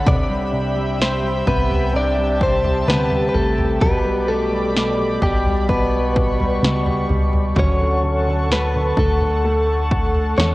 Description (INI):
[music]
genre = pop ballad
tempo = 64 BPM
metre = 4/4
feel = straight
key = unclear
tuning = A4 = 441 Hz
[part]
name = warm concert grand piano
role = accompaniment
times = 0.0-10.5 s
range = B2 to A3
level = -24 LUFS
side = equal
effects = cassette tape
[part]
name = airy breathy pad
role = sustained chords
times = 0.0-10.5 s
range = G4 to D6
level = -24 LUFS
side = equal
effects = chorus, cassette tape
[part]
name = plucky analog bass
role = bass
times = 0.0-10.5 s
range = A1 to E2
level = -22 LUFS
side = equal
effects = none
[part]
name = direct-recorded clean electric guitar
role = melody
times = 0.1-10.5 s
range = G3 to D5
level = -22 LUFS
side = left 1 dB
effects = cassette tape
[part]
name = house drum kit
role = drums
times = 0.1-10.5 s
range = kick drum, snare drum, toms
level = -22 LUFS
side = equal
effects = cassette tape
[sound]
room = moderate spring reverb, RT60 2.3 s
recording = home recording on cassette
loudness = -16 LUFS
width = side -19 dB against mid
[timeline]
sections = 0.0-10.5 A section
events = none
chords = 0.1 Cmaj7; 3.8 G/B; 7.6 Dmaj7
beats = | 0.07 1.00 1.94 2.88 | 3.82 4.75 5.69 6.63 | 7.57 8.50 9.44 10.38